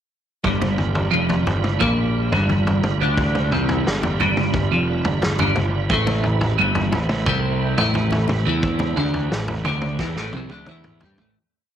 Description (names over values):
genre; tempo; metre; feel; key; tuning
psychedelic rock; 88 BPM; 4/4; straight; G mixolydian; A4 = 436 Hz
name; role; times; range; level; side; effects
tonewheel organ; sustained chords; 0.4-11.3 s; G3 to B5; -29 LUFS; right 12 dB; slow rotary speaker, chorus vibrato
clean electric guitar; riff; 0.4-11.3 s; F2 to G4; -22 LUFS; equal; phaser, double-tracked left and right
fuzz picked electric bass; bass; 0.4-11.3 s; F1 to G2; -23 LUFS; equal; overdrive
vintage drum kit; drums; 0.4-11.3 s; kick drum, snare drum, toms; -24 LUFS; equal; none
congas; percussion; 0.6-11.2 s; none; -34 LUFS; left 8 dB; none
room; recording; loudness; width
little or no reverb; 1960s-style stereo with parts hard left and right; -18 LUFS; side -9 dB against mid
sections
0.4-11.4 groove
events
fade-out 8.6-11.4; drum fill 10.0-11.4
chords
0.4 G7; 5.9 Amadd9/G